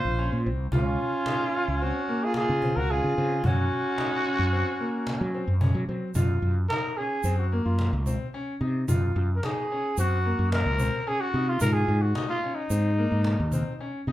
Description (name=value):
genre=progressive instrumental, band music in an uneven meter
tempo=110 BPM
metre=5/4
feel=straight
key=Gb lydian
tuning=A4 = 439 Hz
part: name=growling trumpet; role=melody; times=0.0-13.9 s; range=Eb4 to C5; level=-29 LUFS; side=equal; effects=none
part: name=breathy alto saxophone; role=second line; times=0.0-5.6 s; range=Db4 to Gb4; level=-31 LUFS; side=equal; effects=none
part: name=bright grand piano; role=arpeggios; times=0.0-14.1 s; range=Bb3 to Gb4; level=-33 LUFS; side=left 2 dB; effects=none
part: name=mellow fretless electric bass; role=bass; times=0.1-14.1 s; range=Bb1 to Gb3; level=-25 LUFS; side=equal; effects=none
part: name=cajon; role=drums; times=0.2-14.1 s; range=none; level=-32 LUFS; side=equal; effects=none
part: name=egg shaker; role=percussion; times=6.1-13.8 s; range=none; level=-40 LUFS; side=right 6 dB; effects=none
room=wet studio reverb, RT60 0.5 s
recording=band playing live in one room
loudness=-24 LUFS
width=side -14 dB against mid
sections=0.0-6.2 A section; 6.2-14.1 B section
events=trumpet solo 6.2-14.1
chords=0.0 Bbmadd9; 0.7 Db; 3.4 Gb; 6.2 Gbmaj7; 11.6 Abadd9